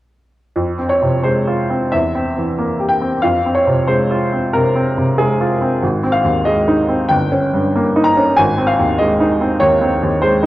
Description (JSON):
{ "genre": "classical, romantic character piece for solo piano", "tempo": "92 BPM", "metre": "4/4", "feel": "uneven beats, rubato", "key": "F minor", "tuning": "A4 = 440 Hz", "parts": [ { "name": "bright baby grand piano", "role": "solo", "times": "0.6-10.5 s", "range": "G1 to Bb5", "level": "-13 LUFS", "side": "equal", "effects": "none" } ], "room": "wet recital hall reverb, RT60 1.8 s", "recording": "worn, warbling old tape, cassette tape, warbly pitch drift, faint mains hum", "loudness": "-13 LUFS", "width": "side -16 dB against mid", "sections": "0.6-10.5 A section", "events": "none", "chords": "0.6 Fm; 1.9 C7/E; 3.2 Fm; 5.8 Ab; 7.1 Eb7/G; 8.4 Ab" }